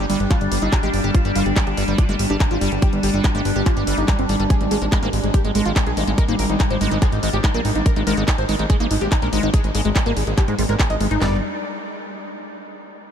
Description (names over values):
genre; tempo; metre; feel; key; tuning
psychedelic trance; 143 BPM; 4/4; straight; G phrygian; A4 = 440 Hz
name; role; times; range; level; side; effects
wide unison lead; melody; 0.0-11.4 s; G3 to Eb5; -26 LUFS; equal; phaser, sidechain pumping, tape echo
overtone-sweeping drone; sustained chords; 0.0-11.3 s; G3 to D4; -26 LUFS; equal; chorus, built-in reverb, sidechain pumping
liquid acid bass; riff; 0.0-11.4 s; G3 to G4; -26 LUFS; moving between left 6 dB and right 5 dB; chorus, auto-pan, sidechain pumping, diffuse ambient delay
fat analog bass; bass; 0.0-11.4 s; G1 to Ab2; -22 LUFS; equal; none
drum and bass drum kit; drums; 0.1-11.2 s; handclaps, hi-hat; -28 LUFS; equal; none
garage drum kit; drums; 0.3-11.3 s; handclaps, kick drum, snare drum, toms; -18 LUFS; equal; none
formant-sweep wobble bass; second line; 4.9-6.1 s; none; barely audible; none; none
room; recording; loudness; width
light reverb; none; -17 LUFS; side -8 dB against mid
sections
0.0-11.2 A section; 11.2-12.9 B section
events
drop 0.0-11.2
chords
0.0 G5; 4.5 Ab5; 11.2 G5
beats
0.31 0.72 | 1.15 1.56 1.98 2.40 | 2.82 3.24 3.66 4.08 | 4.50 4.92 5.34 5.76 | 6.18 6.60 7.02 7.44 | 7.86 8.28 8.70 9.12 | 9.54 9.96 10.38 10.79 | 11.21